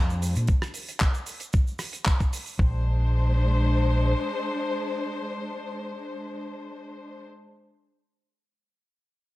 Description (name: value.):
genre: nu-disco, nu disco.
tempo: 114 BPM.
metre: 4/4.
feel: straight.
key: Bb mixolydian.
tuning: A4 = 440 Hz.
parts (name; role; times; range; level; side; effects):
clear studio string section; sustained chords; 0.0-7.2 s; Ab3 to C5; -30 LUFS; left 2 dB; sidechain pumping.
fingered electric bass with an envelope filter; bass; 0.0-4.1 s; Bb1 to Bb2; -23 LUFS; equal; none.
damped 70s drum kit; drums; 0.1-2.6 s; handclaps, hi-hat, rim click, shaker; -32 LUFS; equal; studio reverb.
electronic kick drum; drums; 0.5-2.7 s; none; -22 LUFS; equal; studio reverb.
room: little or no reverb.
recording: none.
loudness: -23 LUFS.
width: side -18 dB against mid.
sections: 0.0-2.6 A section; 2.6-6.8 B section.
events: drop 0.0-2.6.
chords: 0.0 Bb9 (rootless); 2.6 Bb9.